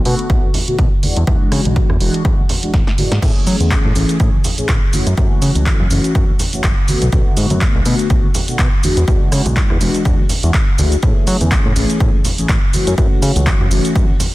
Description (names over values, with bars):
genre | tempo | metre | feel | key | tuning
filtered disco house | 123 BPM | 4/4 | swing 56% on 16ths | unclear | A4 = 441 Hz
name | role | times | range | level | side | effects
mellow synth brass | accompaniment | 0.0-14.1 s | D3 to G#4 | -20 LUFS | left 1 dB | chorus, phaser, sidechain pumping, low-pass filter
fat analog bass | bass | 0.0-14.1 s | E1 to F#3 | -17 LUFS | equal | sidechain pumping, low-pass filter
punchy analog drum machine | drums | 0.1-14.3 s | crash cymbal, handclaps, hi-hat, rim click, shaker, snare drum | -22 LUFS | right 1 dB | sidechain pumping on hats, studio reverb, sidechain pumping on cymbals, sidechain pumping on perc
tambourine and congas | percussion | 0.2-14.3 s | none | -25 LUFS | right 2 dB | none
electronic kick drum | drums | 0.3-14.1 s | none | -15 LUFS | equal | studio reverb
room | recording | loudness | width
digital ambience | dense, heavily limited modern master | -12 LUFS | side -18 dB against mid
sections
0.0-14.3 A section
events
filter sweep 0.0-14.3; drum fill 2.7-3.2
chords
0.0 Bm7; 1.0 E9; 3.2 Amaj7; 4.9 F#m7; 6.9 Bm7; 8.8 E9; 11.0 Amaj7; 12.7 F#m7